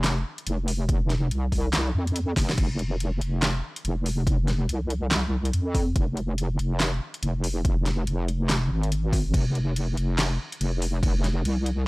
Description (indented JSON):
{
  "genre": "deep dubstep",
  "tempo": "142 BPM",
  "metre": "4/4",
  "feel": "swing 60% on 16ths, half-time",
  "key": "F minor",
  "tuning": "A4 = 440 Hz",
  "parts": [
    { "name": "wobble bass", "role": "bass", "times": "0.0-11.9 s", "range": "F1 to F2", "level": "-25 LUFS", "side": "equal", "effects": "chorus" },
    { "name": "deep house drum kit", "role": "drums", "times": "0.0-11.8 s", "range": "crash cymbal, handclaps, hi-hat, snare drum", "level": "-29 LUFS", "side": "equal", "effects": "overdrive, studio reverb" },
    { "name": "electronic kick drum", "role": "drums", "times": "0.9-11.1 s", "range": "none", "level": "-25 LUFS", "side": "equal", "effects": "overdrive, studio reverb" }
  ],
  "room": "little or no reverb",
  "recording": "dry, gritty hardware recording",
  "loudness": "-23 LUFS",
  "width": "side -24 dB against mid",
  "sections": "0.0-11.9 A section",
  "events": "drum fill 2.4",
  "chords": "none"
}